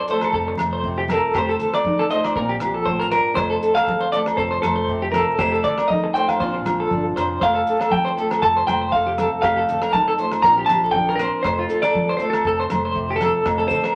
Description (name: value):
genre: highlife guitar band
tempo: 119 BPM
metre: 4/4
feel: swing 54% on 16ths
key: F major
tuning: A4 = 441 Hz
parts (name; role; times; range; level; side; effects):
- semi-hollow electric guitar; melody; 0.0-13.9 s; A4 to Bb5; -23 LUFS; equal; none
- nylon-string guitar; accompaniment; 0.0-13.9 s; F2 to A4; -29 LUFS; equal; none
- clean electric guitar; arpeggios; 0.0-13.9 s; F4 to C5; -26 LUFS; equal; tremolo
- cloth-damped thuddy drum kit; drums; 0.1-13.9 s; hi-hat, kick drum, rim click; -35 LUFS; equal; none
- congas; percussion; 0.1-13.8 s; none; -32 LUFS; equal; none
- agogo bells; percussion; 0.2-13.9 s; none; -30 LUFS; equal; none
- fingered electric bass; bass; 0.3-13.7 s; F1 to Bb1; -35 LUFS; equal; none
room: wet studio reverb, RT60 0.7 s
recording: vinyl crackle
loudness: -20 LUFS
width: mono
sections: 0.0-13.9 A section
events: none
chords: 0.0 F; 1.4 F7; 2.4 Bbadd9; 3.4 F; 5.4 F7; 6.4 Bbadd9; 7.4 F; 9.4 F7; 10.4 Bbadd9; 11.4 F